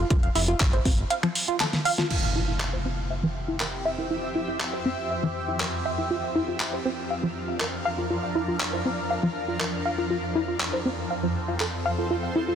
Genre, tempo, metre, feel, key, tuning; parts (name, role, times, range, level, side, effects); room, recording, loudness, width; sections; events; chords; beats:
progressive house; 120 BPM; 4/4; straight; A4 = 438 Hz
tight sequenced synth; arpeggios; 0.0-12.6 s; E3 to F5; -28 LUFS; equal; chorus, sidechain pumping, digital delay
fat analog bass; bass; 0.0-1.0 s; F1 to G1; -27 LUFS; equal; sidechain pumping
electronic kick drum; drums; 0.1-1.0 s; -23 LUFS; equal
pop drum kit; drums; 0.1-11.7 s; crash cymbal, finger snaps, handclaps, hi-hat, snare drum; -31 LUFS; equal; soft clipping on snare
shimmering ambient pad; sustained chords; 3.0-12.6 s; F2 to F5; -30 LUFS; equal; chorus, built-in reverb, phaser, sidechain pumping
impact; sound effects; 2.1-4.1 s; -30 LUFS; equal
light reverb, digital ambience; dense, heavily limited modern master; -24 LUFS; side -8 dB against mid
0.0-2.1 A section; 2.1-12.6 B section
drum fill 1.6-2.1; band accent 2.0; impact 2.1-4.1; filter sweep on synth arpeggio sound 2.1-12.6
0.0 Fsus2; 2.1 C/F; 6.1 Bb/F; 10.1 F
| 0.10 0.60 1.10 1.60 | 2.10 2.60 3.10 3.60 | 4.11 4.61 5.11 5.61 | 6.11 6.61 7.11 7.61 | 8.11 8.61 9.11 9.61 | 10.11 10.61 11.11 11.61 | 12.11